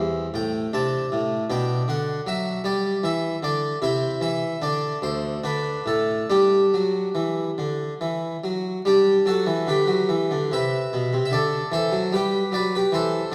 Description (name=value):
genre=classical, baroque-style suite movement for harpsichord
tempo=68-79 BPM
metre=3/4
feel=rubato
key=G major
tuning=A4 = 441 Hz
part: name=harpsichord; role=solo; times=0.0-13.3 s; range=D2 to A5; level=-23 LUFS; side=equal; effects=none
room=wet recital hall reverb, RT60 1.7 s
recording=heard from further back in the room, vinyl crackle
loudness=-23 LUFS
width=mono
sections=0.0-8.9 A section; 8.9-13.3 A section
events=none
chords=0.0 Am; 0.7 D5/C; 1.5 G/B; 3.8 C; 4.6 N.C.; 5.4 D5; 6.3 G5; 8.9 G; 11.3 D7